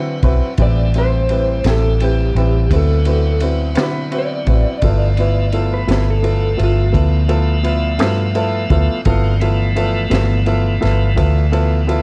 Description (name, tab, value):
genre	slow blues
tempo	57 BPM (dotted quarters)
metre	12/8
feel	straight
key	unclear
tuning	A4 = 444 Hz
part	warm upright piano	accompaniment	0.0-12.0 s	B3 to B4	-23 LUFS	equal	none
part	tonewheel organ	sustained chords	0.0-12.0 s	E3 to E5	-29 LUFS	equal	slow rotary speaker
part	vintage muted fingered electric bass	bass	0.0-12.0 s	G1 to D3	-18 LUFS	equal	none
part	crunchy breakbeat drum kit	drums	0.2-12.0 s	kick drum, ride cymbal, snare drum	-26 LUFS	equal	none
part	electric guitar through a small old amp	melody	0.6-7.0 s	F4 to D5	-24 LUFS	equal	tremolo
room	little or no reverb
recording	dry, gritty hardware recording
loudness	-16 LUFS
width	mono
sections	0.0-12.0 A section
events	clean electric guitar solo 0.0-12.0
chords	0.0 D13; 0.6 Am7; 2.7 D13; 4.8 G13